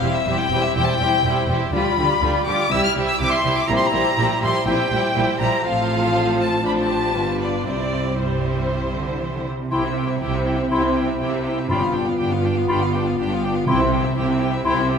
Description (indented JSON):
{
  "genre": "quick classical-period movement for symphony orchestra",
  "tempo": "122 BPM",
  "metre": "4/4",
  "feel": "straight",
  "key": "C major",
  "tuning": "A4 = 440 Hz",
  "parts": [
    { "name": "rich chamber violin section", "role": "melody", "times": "0.0-15.0 s", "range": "C5 to F6", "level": "-24 LUFS", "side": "left 4 dB", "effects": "none" },
    { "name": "rich chamber violin section", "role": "second line", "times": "0.0-15.0 s", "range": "E4 to E5", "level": "-27 LUFS", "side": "equal", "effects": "none" },
    { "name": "rich chamber viola section", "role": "accompaniment", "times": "0.0-15.0 s", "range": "F3 to F4", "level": "-26 LUFS", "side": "right 2 dB", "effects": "none" },
    { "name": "mellow French horn section", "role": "sustained chords", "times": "0.0-15.0 s", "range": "G3 to F4", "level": "-26 LUFS", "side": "left 3 dB", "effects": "none" },
    { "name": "rich chamber double bass section", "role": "bass", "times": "0.0-15.0 s", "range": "E1 to D2", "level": "-27 LUFS", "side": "right 2 dB", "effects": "none" },
    { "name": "rich studio cello section", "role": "bass", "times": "0.0-15.0 s", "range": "E2 to E3", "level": "-27 LUFS", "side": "right 3 dB", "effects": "none" },
    { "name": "hollow concert flute", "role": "second line", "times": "9.7-14.9 s", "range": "B5 to C6", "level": "-27 LUFS", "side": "left 2 dB", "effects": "none" },
    { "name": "warm clarinet", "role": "second line", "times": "9.7-14.8 s", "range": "E4 to F4", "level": "-28 LUFS", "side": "left 2 dB", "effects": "none" },
    { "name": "timpani", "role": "percussion", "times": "9.7-14.4 s", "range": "G2 to C3", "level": "-29 LUFS", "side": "left 1 dB", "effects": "none" }
  ],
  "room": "wet concert hall reverb, RT60 1.9 s",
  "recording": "minimal, uncompressed stereo recording",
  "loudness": "-18 LUFS",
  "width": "side -6 dB against mid",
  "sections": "0.0-9.7 A section; 9.7-15.0 B section",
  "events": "none",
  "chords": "0.0 C/E; 1.7 G7/D; 2.7 C; 3.7 C7/Bb; 5.7 F/A; 6.6 Dm7/A; 7.1 G7; 7.7 C; 11.7 G7; 13.7 C"
}